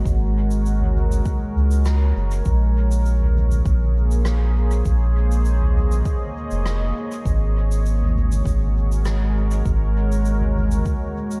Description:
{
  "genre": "ambient dub",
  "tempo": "100 BPM",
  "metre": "4/4",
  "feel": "straight",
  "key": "unclear",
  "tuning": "A4 = 441 Hz",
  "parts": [
    { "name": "deep dark ambient pad", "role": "sustained chords", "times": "0.0-11.4 s", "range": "Ab3 to Eb5", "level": "-30 LUFS", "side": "equal", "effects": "chorus, built-in reverb" },
    { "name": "soft dub sub bass", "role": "bass", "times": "0.0-10.8 s", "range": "F1 to Db2", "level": "-21 LUFS", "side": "equal", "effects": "none" },
    { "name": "electronic kick drum", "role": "drums", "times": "0.1-11.0 s", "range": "none", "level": "-25 LUFS", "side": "equal", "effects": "none" },
    { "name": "soft-mallet drum kit", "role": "drums", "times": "0.1-11.4 s", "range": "rim click, shaker, toms", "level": "-32 LUFS", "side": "equal", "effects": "none" }
  ],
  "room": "little or no reverb",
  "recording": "dark, warm production",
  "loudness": "-20 LUFS",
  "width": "mono",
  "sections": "0.0-11.4 A section",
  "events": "none",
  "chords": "0.0 Ab9sus4; 2.5 Bbm11; 7.3 Ab9sus4",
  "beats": "| 0.06 0.66 1.26 1.86 | 2.46 3.06 3.66 4.26 | 4.86 5.46 6.06 6.66 | 7.26 7.86 8.46 9.06 | 9.66 10.26 10.86"
}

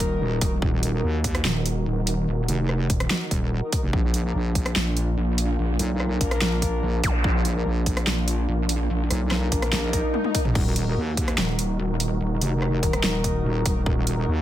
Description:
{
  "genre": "heavy wobble dubstep",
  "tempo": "145 BPM",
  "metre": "4/4",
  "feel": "half-time",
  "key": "Eb harmonic minor",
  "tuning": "A4 = 440 Hz",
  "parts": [
    { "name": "supersaw chords", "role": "sustained chords", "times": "0.0-14.4 s", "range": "Eb3 to Bb4", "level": "-31 LUFS", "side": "right 2 dB", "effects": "sidechain pumping, low-pass filter" },
    { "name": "mellow brass ensemble", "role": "stabs", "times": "0.0-1.1, 3.6-14.3 s", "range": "D4 to Bb4", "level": "-32 LUFS", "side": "left 3 dB", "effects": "tape echo" },
    { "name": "pulsing pluck wobble bass", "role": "bass", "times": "0.0-13.8 s", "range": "Eb1 to Bb1", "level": "-24 LUFS", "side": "equal", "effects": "distortion, chorus, overdrive" },
    { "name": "big-room dance drum kit", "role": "drums", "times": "0.0-14.2 s", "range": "crash cymbal, hi-hat, rim click, snare drum, toms", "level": "-27 LUFS", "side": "equal", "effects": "overdrive, small room ambience" },
    { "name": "electronic kick drum", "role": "drums", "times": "0.0-13.9 s", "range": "none", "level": "-25 LUFS", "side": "equal", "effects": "overdrive, small room ambience" },
    { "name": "wobble bass", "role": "bass", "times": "0.2-14.4 s", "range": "Eb1 to Eb2", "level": "-24 LUFS", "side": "equal", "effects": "chorus, overdrive" },
    { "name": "zap and swell", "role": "sound effects", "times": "7.0-7.1, 9.9-10.6 s", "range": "none", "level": "-29 LUFS", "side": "left 1 dB", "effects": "none" }
  ],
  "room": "digital ambience",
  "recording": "none",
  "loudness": "-21 LUFS",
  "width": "side -13 dB against mid",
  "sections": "0.0-14.4 A section",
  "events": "swell 9.9-10.6; drum fill 10.1-10.6",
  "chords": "0.0 Ebm; 3.9 Bb; 10.6 Ebm",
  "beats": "0.21 | 0.62 1.04 1.45 1.86 | 2.28 2.69 3.10 3.52 | 3.93 4.35 4.76 5.17 | 5.59 6.00 6.42 6.83 | 7.24 7.66 8.07 8.48 | 8.90 9.31 9.72 10.14 | 10.55 10.97 11.38 11.79 | 12.21 12.62 13.04 13.45 | 13.86 14.28"
}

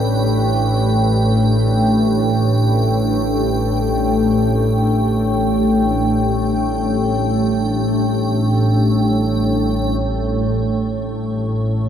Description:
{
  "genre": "dark ambient drone",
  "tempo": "free time",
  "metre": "none",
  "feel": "none",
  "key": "unclear",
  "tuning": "A4 = 440 Hz",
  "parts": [
    { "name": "deep dark ambient pad", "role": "sustained chords", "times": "0.0-11.9 s", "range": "A3 to B4", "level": "-20 LUFS", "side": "equal", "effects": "chorus, built-in reverb, shimmer reverb" },
    { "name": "organ-like drone", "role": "drone", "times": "0.0-11.9 s", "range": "A1 to A2", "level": "-17 LUFS", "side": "equal", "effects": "ensemble chorus, built-in reverb" },
    { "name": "icy glass pad", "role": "texture", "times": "0.0-11.9 s", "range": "E5 to G5", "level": "-25 LUFS", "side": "right 2 dB", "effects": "chorus, built-in reverb, shimmer reverb" },
    { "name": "gamelan-type bronze metallophone", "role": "arpeggios", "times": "8.5-11.9 s", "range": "none", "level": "barely audible", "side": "none", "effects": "none" }
  ],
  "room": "wet huge ambient reverb, RT60 8.1 s",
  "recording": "in a vast, echoing space",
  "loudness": "-15 LUFS",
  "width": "side -9 dB against mid",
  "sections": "0.0-10.0 A section; 10.0-11.9 B section",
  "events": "filter sweep on synth drone 0.0-10.0",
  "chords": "0.0 G/A; 10.0 A5",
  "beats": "free time"
}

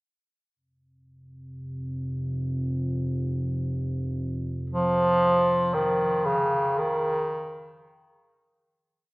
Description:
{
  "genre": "dark ambient drone",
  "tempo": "free time",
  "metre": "none",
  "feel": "none",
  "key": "unclear",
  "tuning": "A4 = 441 Hz",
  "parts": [
    { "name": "deep rumbling drone", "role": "drone", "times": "1.4-8.9 s", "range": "F2 to C3", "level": "-30 LUFS", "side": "equal", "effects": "built-in reverb" },
    { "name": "clear bass clarinet", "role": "melody", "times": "4.7-7.8 s", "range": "Db3 to F3", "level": "-22 LUFS", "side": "equal", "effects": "tape echo" }
  ],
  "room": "wet cathedral reverb, RT60 6.1 s",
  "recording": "AM radio sound",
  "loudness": "-23 LUFS",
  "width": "side -23 dB against mid",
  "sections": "0.5-8.8 A section",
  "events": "fade-out 4.7-8.8",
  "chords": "0.5 F5",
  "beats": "free time"
}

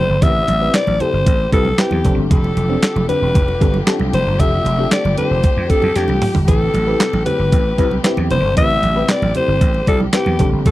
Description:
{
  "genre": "early-eighties boogie funk",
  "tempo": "115 BPM",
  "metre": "4/4",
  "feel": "straight",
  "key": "A minor",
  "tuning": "A4 = 437 Hz",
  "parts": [
    { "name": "raspy alto saxophone", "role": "melody", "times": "0.0-10.7 s", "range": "G4 to E5", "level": "-19 LUFS", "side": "left 2 dB", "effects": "none" },
    { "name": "FM electric piano with tremolo", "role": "accompaniment", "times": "0.0-10.7 s", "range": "C4 to D5", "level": "-22 LUFS", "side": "left 1 dB", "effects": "phaser" },
    { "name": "warm studio string section", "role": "sustained chords", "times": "0.0-10.7 s", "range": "C3 to G4", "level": "-28 LUFS", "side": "left 1 dB", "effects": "none" },
    { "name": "vintage slap bass", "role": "bass", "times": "0.0-10.7 s", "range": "E1 to F2", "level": "-18 LUFS", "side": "equal", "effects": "none" },
    { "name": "clean 12-bit digital drum machine", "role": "drums", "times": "0.2-10.7 s", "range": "handclaps, hi-hat, kick drum, snare drum, toms", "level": "-16 LUFS", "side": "equal", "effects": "none" },
    { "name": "congas", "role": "percussion", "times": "0.2-10.7 s", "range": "none", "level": "-25 LUFS", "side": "right 3 dB", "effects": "none" }
  ],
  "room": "little or no reverb",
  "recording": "dry, close 1970s-style studio recording",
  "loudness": "-13 LUFS",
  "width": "side -16 dB against mid",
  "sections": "0.0-10.7 A section",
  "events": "drum fill 6.0-6.5",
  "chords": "0.0 Am9; 2.0 F69; 6.5 Am9",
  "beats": "| 0.22 0.74 1.26 1.79 | 2.31 2.83 3.35 3.87 | 4.40 4.92 5.44 5.96 | 6.48 7.00 7.53 8.05 | 8.57 9.09 9.61 10.13 | 10.66"
}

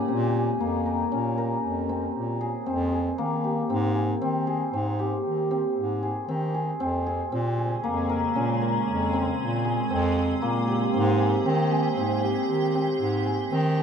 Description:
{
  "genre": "contemporary instrumental, chamber music in an uneven meter",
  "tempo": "116 BPM",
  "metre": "7/4",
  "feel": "straight",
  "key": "unclear",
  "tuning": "A4 = 441 Hz",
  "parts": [
    { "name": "icy glass pad", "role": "sustained chords", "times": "0.0-0.1, 7.3-13.8 s", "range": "Db3 to G4", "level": "-32 LUFS", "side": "right 5 dB", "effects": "chorus, built-in reverb" },
    { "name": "cimbalom", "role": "arpeggios", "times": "0.0-13.8 s", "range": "Bb3 to Bb4", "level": "-26 LUFS", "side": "left 1 dB", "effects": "none" },
    { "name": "mellow bass clarinet", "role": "bass", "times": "0.1-13.8 s", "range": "F2 to Eb3", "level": "-28 LUFS", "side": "equal", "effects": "none" }
  ],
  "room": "wet huge ambient reverb, RT60 8.2 s",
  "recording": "in a vast, echoing space",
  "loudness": "-23 LUFS",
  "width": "side -7 dB against mid",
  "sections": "0.1-13.8 A section",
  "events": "none",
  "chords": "0.1 Bbm9; 3.7 Abmaj7; 7.3 Bbm9; 10.9 Abmaj7",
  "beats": "| 0.09 0.61 1.12 1.64 2.16 2.67 3.19 | 3.71 4.22 4.74 5.26 5.78 6.29 6.81 | 7.33 7.84 8.36 8.88 9.39 9.91 10.42 | 10.94 11.46 11.97 12.49 13.01 13.52"
}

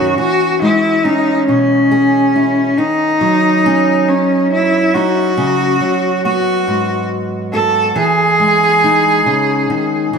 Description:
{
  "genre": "acoustic folk-pop ballad",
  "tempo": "46 BPM (dotted quarters)",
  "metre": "6/8",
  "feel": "straight",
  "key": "unclear",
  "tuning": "A4 = 440 Hz",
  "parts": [
    { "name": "bright cello", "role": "melody", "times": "0.0-10.1 s", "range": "C#4 to A4", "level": "-13 LUFS", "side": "equal", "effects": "none" },
    { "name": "fingerpicked steel-string acoustic guitar", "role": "accompaniment", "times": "0.0-10.2 s", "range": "F#2 to G#4", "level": "-16 LUFS", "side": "right 1 dB", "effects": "none" }
  ],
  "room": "wet plate reverb, RT60 3.4 s",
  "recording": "heard from further back in the room",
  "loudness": "-11 LUFS",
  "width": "side -6 dB against mid",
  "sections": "0.2-10.2 A section",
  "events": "none",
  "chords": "0.2 E6; 2.8 D#m7; 5.4 C#7sus4; 8.0 Emaj7",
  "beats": "| 0.17 1.47 | 2.77 4.07 | 5.37 6.66 | 7.95 9.25"
}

